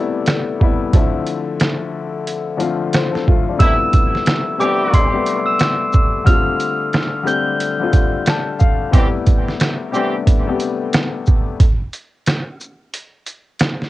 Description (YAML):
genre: hip hop, boom-bap hip-hop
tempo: 90 BPM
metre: 4/4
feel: swing 62% on 16ths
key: A minor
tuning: A4 = 439 Hz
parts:
  - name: warm upright piano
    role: accompaniment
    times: 0.0-11.6 s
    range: C3 to A5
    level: -20 LUFS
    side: left 6 dB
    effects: high-pass filter, low-pass filter, cassette tape
  - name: trip hop sampler-style drum kit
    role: drums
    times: 0.3-13.9 s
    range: hi-hat, kick drum, rim click, shaker, snare drum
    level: -15 LUFS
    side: right 1 dB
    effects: none
  - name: glockenspiel with brass mallets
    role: melody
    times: 3.6-7.8 s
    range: C6 to G7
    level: -19 LUFS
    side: equal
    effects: high-pass filter, low-pass filter, cassette tape, tape echo
  - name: clear horn section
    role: stabs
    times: 3.6-10.1 s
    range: C3 to G4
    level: -24 LUFS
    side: right 1 dB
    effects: high-pass filter, low-pass filter, cassette tape, tape echo
room: little or no reverb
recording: home recording on cassette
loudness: -14 LUFS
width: side -16 dB against mid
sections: 0.0-3.6 A section; 3.6-13.9 B section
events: upright piano fill 7.9-8.9; break 11.6-13.9; kick muted 12.9-13.9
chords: 0.0 Am9; 0.9 Dm9; 3.6 Am7; 6.3 F69; 8.9 Am7; 11.6 N.C.